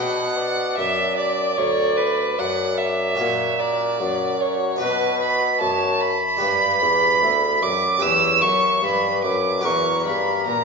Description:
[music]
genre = classical, baroque-style sonata movement with continuo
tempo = 74 BPM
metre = 4/4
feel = rubato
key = unclear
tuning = A4 = 442 Hz
[part]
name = mellow trumpet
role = melody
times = 0.0-10.6 s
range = F#4 to E5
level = -28 LUFS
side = left 8 dB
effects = none
[part]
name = rich violin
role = second line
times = 0.0-10.6 s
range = B4 to E6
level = -20 LUFS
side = right 3 dB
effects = none
[part]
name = harpsichord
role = accompaniment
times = 0.0-10.6 s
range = D2 to B4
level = -27 LUFS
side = left 3 dB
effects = none
[part]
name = warm bassoon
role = bass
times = 0.0-10.6 s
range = D2 to B2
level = -25 LUFS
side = equal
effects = none
[sound]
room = wet scoring stage reverb, RT60 2.0 s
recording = recorded in a church or concert hall, nothing above 7.7 kHz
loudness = -18 LUFS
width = side -4 dB against mid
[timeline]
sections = 0.0-10.6 A section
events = none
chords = 0.0 Bm; 3.2 F#/A#; 4.8 Bm; 6.4 G; 8.0 C#m7b5/E; 9.6 F#7/E

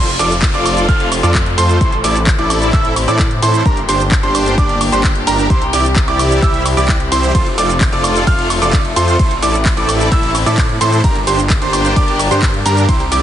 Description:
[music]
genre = EDM, festival progressive house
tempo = 130 BPM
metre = 4/4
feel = straight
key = F major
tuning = A4 = 440 Hz
[part]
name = rich chamber string section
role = sustained chords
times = 0.0-13.2 s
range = C3 to G4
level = -21 LUFS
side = left 2 dB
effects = sidechain pumping
[part]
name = warm grand piano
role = arpeggios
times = 0.0-13.2 s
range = Bb5 to F6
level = -19 LUFS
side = right 3 dB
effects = sidechain pumping, tape echo
[part]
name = dense compressed supersaw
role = riff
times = 0.0-13.2 s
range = D4 to F5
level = -18 LUFS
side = right 1 dB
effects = sidechain pumping, tape echo
[part]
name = wide detuned saw bass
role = bass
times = 0.0-13.2 s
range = F1 to A2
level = -18 LUFS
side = equal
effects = chorus, tube saturation, sidechain pumping
[part]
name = downlifter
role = sound effects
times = 0.0-3.7 s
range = none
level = -26 LUFS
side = equal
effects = none
[part]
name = house drum kit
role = drums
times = 0.1-13.2 s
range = handclaps, hi-hat, ride cymbal, shaker, woodblock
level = -20 LUFS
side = right 1 dB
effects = none
[part]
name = electronic kick drum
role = drums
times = 0.4-13.0 s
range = none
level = -14 LUFS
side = equal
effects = none
[sound]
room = light reverb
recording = heavily compressed radio sound, multiband compression, nothing above 10.5 kHz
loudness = -11 LUFS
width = side -11 dB against mid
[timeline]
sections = 0.0-13.2 A section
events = none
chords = 0.0 F; 1.8 Am; 3.7 Gm; 5.5 C; 7.3 F; 9.2 Am; 11.0 Gm

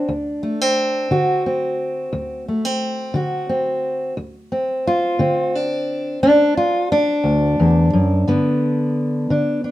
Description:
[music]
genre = acoustic country blues, solo or duo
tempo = 58 BPM (dotted quarters)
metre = 12/8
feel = straight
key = D mixolydian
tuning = A4 = 440 Hz
[part]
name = fingerpicked steel-string acoustic guitar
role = solo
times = 0.0-9.7 s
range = D2 to F#4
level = -17 LUFS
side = equal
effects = none
[sound]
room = light reverb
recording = minimal, uncompressed stereo recording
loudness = -17 LUFS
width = side -15 dB against mid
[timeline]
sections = 0.0-9.7 A section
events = none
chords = 0.0 D7; 8.3 G

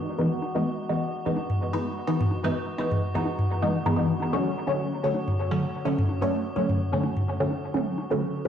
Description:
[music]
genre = dub techno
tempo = 127 BPM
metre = 4/4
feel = swing 56% on 16ths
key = C# phrygian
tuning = A4 = 440 Hz
[part]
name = metallic inharmonic drone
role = texture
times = 0.0-8.5 s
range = F#4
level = -36 LUFS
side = equal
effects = chorus, built-in reverb
[part]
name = filtered dub chord stab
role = stabs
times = 0.2-8.5 s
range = D3 to D#4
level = -25 LUFS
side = equal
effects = phaser, dub echo
[part]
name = electronic bongos and toms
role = percussion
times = 0.4-8.1 s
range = none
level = -29 LUFS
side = equal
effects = overdrive
[sound]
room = wet echo chamber reverb, RT60 1.7 s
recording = played on a big sound system in a bare room, stone room reverb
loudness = -24 LUFS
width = side -9 dB against mid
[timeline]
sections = 0.0-8.5 A section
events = none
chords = 0.0 C#m9

